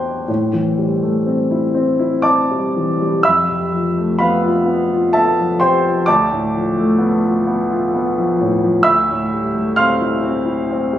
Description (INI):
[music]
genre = classical, impressionist solo piano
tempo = 63 BPM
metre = 3/4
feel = uneven beats, rubato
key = A minor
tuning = A4 = 440 Hz
[part]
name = warm concert grand piano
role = solo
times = 0.0-11.0 s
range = D2 to F#6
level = -14 LUFS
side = equal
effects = none
[sound]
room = moderate concert hall reverb, RT60 1.9 s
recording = recorded on a phone in the room, club reverb, compression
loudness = -14 LUFS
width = side -11 dB against mid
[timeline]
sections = 0.3-11.0 A section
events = none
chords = 0.3 Am7; 3.2 Fmaj7#11; 6.1 Dm6; 8.9 Fmaj9/D